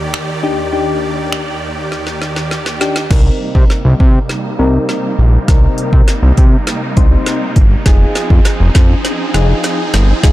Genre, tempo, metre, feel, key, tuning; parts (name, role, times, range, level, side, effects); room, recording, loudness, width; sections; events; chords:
dance-pop; 101 BPM; 4/4; straight; C minor; A4 = 437 Hz
supersaw chords; sustained chords; 0.0-10.3 s; Eb2 to D5; -20 LUFS; right 1 dB; sidechain pumping, low-pass filter
deep house drum kit; drums; 0.1-10.3 s; crash cymbal, finger snaps, hi-hat, kick drum, snare drum; -12 LUFS; equal
soft electric-piano-like synth keys; accompaniment; 0.4-10.3 s; C4 to C5; -19 LUFS; left 3 dB; chorus, sidechain pumping, low-pass filter
fat analog bass; bass; 3.1-10.3 s; F1 to C3; -11 LUFS; equal; sidechain pumping
riser; sound effects; 6.1-10.3 s; -26 LUFS; equal
group handclap; percussion; 8.2-9.8 s; -31 LUFS; right 3 dB
digital ambience; dark, warm production; -10 LUFS; side -16 dB against mid
0.0-3.1 A section; 3.1-10.3 B section
drum fill 1.9-3.1, 3.1-10.3; build-up 3.1-10.3; filter sweep 3.1-10.3; riser 6.1-10.3
0.0 Ebmaj7; 3.1 Cm7; 7.9 Fm7